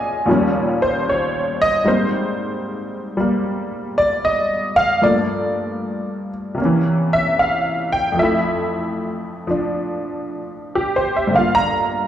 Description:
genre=solo jazz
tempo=76 BPM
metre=4/4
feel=swing 67% on 8ths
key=F major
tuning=A4 = 441 Hz
part: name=honky-tonk upright piano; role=solo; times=0.0-12.1 s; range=Eb2 to Bb5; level=-17 LUFS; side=equal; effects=none
room=wet recital hall reverb, RT60 1.4 s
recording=recorded in a church or concert hall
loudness=-17 LUFS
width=side -10 dB against mid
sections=0.0-12.1 A section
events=honky-tonk piano solo 0.0-12.1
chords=0.3 Eb9; 1.9 Abmaj9; 5.0 Gm9; 6.6 C7b9; 8.2 Fmaj7; 11.3 Gm7

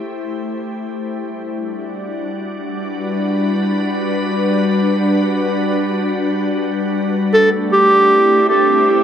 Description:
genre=ambient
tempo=free time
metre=none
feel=none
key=unclear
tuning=A4 = 440 Hz
part: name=soft additive organ-like pad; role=sustained chords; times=0.0-9.0 s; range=G3 to C5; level=-17 LUFS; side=left 1 dB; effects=ensemble chorus, built-in reverb
part: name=warm clarinet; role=melody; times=7.3-9.0 s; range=G4 to A4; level=-10 LUFS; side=right 1 dB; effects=dub echo
room=moderate spring reverb, RT60 1.6 s, studio ambience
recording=echo-heavy mix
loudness=-14 LUFS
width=side -9 dB against mid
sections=0.0-9.0 A section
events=fade-in on ambient pad 0.0-9.0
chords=0.0 Am7; 1.2 Gmaj7; 7.3 Am7

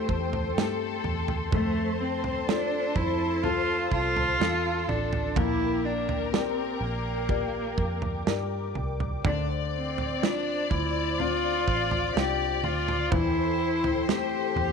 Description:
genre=pop ballad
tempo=62 BPM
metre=4/4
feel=straight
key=D minor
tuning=A4 = 441 Hz
part: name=dark cello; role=melody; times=0.0-14.7 s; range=A3 to G4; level=-29 LUFS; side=right 2 dB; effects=none
part: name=rich studio violin section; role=second line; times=0.0-14.7 s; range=A4 to D5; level=-33 LUFS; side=left 13 dB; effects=none
part: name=clear upright piano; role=accompaniment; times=0.0-14.7 s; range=D3 to D5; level=-32 LUFS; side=left 13 dB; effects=none
part: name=warm analog pad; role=sustained chords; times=0.0-14.7 s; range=A4 to D6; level=-36 LUFS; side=right 2 dB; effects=chorus
part: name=vintage muted fingered electric bass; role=bass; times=0.0-14.7 s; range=A1 to G2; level=-33 LUFS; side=right 1 dB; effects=none
part: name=natural country drum kit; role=drums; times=0.1-14.7 s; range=kick drum, snare drum, toms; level=-30 LUFS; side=right 4 dB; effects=none
room=small room ambience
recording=1960s-style stereo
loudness=-25 LUFS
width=side -6 dB against mid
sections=0.0-14.7 A section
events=none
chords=0.0 Am7/E; 1.5 F; 5.4 Bb6; 9.2 Dm7; 13.1 Am7/E

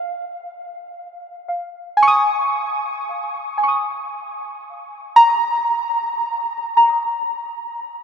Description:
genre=ambient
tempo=free time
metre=none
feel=none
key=unclear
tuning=A4 = 440 Hz
part: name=soft round pluck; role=solo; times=2.0-6.3 s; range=Ab5 to Eb6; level=-17 LUFS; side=equal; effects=chorus, analog delay
room=wet huge ambient reverb, RT60 8.4 s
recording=dreamy mix soaked in reverb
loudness=-16 LUFS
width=side -8 dB against mid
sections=0.0-8.0 A section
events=none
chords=0.0 Fm7 (rootless); 6.0 N.C.

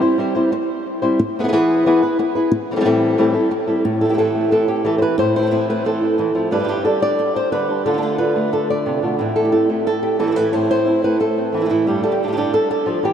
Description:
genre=flamenco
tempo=180 BPM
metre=4/4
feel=straight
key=A minor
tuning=A4 = 440 Hz
part: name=flamenco guitar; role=melody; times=0.0-13.1 s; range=A2 to D5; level=-16 LUFS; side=left 1 dB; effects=tape echo
part: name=flamenco guitar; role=stabs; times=3.9-13.1 s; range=G2 to G4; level=-21 LUFS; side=right 4 dB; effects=tape echo
room=wet huge ambient reverb, RT60 5.1 s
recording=dreamy mix soaked in reverb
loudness=-16 LUFS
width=side -8 dB against mid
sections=0.0-3.9 A section; 3.9-13.1 B section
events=none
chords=0.0 C; 1.2 E; 2.5 Am7; 3.9 Am; 6.5 Gsus2; 7.9 Dm; 9.2 Am; 11.9 Gsus2

